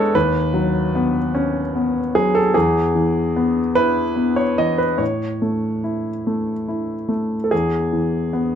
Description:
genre	neoclassical minimalist piano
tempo	49 BPM (dotted quarters)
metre	6/8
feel	rubato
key	E major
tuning	A4 = 440 Hz
part	warm baby grand piano	solo	0.0-8.6 s	D#2 to D#5	-17 LUFS	equal	none
room	light reverb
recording	close, detailed microphones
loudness	-17 LUFS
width	side -8 dB against mid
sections	0.0-8.6 A section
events	none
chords	0.1 Badd9/D#; 2.5 E; 5.0 A; 7.5 E

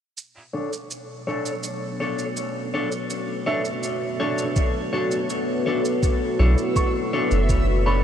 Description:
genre	ambient dub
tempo	82 BPM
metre	4/4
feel	straight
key	B minor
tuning	A4 = 440 Hz
part	deep dark ambient pad	sustained chords	1.2-8.0 s	B3 to C#5	-26 LUFS	left 1 dB	chorus, built-in reverb
part	shaker	drums	0.2-7.6 s	none	-38 LUFS	right 4 dB	small room ambience, dub echo
part	clean electric guitar	stabs	0.5-8.0 s	D4 to C#5	-27 LUFS	left 1 dB	low-pass filter, dub echo
part	felt-muted upright piano	arpeggios	3.5-8.0 s	D4 to C#6	-30 LUFS	right 2 dB	low-pass filter, dub echo
part	electronic kick drum	drums	4.6-7.6 s	none	-22 LUFS	equal	small room ambience
part	backwards swelling texture	texture	6.0-8.0 s	E5	-36 LUFS	equal	built-in reverb, wide subtle chorus
part	soft dub sub bass	bass	6.4-8.0 s	F#1 to B1	-18 LUFS	equal	none
room	moderate huge ambient reverb, RT60 7.1 s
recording	dreamy mix soaked in reverb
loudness	-21 LUFS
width	side -9 dB against mid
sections	0.2-6.0 A section; 6.0-8.0 B section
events	filter sweep on ambient pad 0.2-6.0; filter sweep on clean electric guitar 0.2-6.0; filter sweep on felt piano 6.0-8.0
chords	0.2 Bm9

